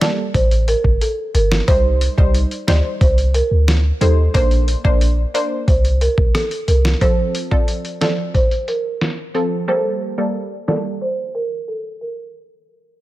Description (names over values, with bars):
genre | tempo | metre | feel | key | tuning
dancehall | 90 BPM | 4/4 | straight | G minor | A4 = 440 Hz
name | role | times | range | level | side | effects
folk marimba with medium mallets | melody | 0.0-12.1 s | A4 to D5 | -22 LUFS | right 1 dB | ping-pong delay
analog pluck | accompaniment | 0.0-10.9 s | F3 to C5 | -23 LUFS | right 1 dB | chorus
dusty soul sampler-style drum kit | drums | 0.0-10.8 s | hi-hat, kick drum, rim click, snare drum | -18 LUFS | equal | none
clean 808-style bass | bass | 0.3-6.9 s | G1 to Eb2 | -16 LUFS | equal | none
room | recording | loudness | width
little or no reverb | low-pass filter | -15 LUFS | side -16 dB against mid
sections
0.0-7.0 A section; 7.0-12.3 B section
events
filter sweep 7.0-12.3; break 11.0-12.3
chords
0.0 Gmadd9; 1.7 Cm; 4.3 Bbadd9; 7.0 F; 9.7 Gmadd9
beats
0.35 1.01 | 1.68 2.35 3.01 3.68 | 4.35 5.01 5.68 6.35 | 7.01 7.68 8.35 9.01 | 9.68 10.35 11.01 11.68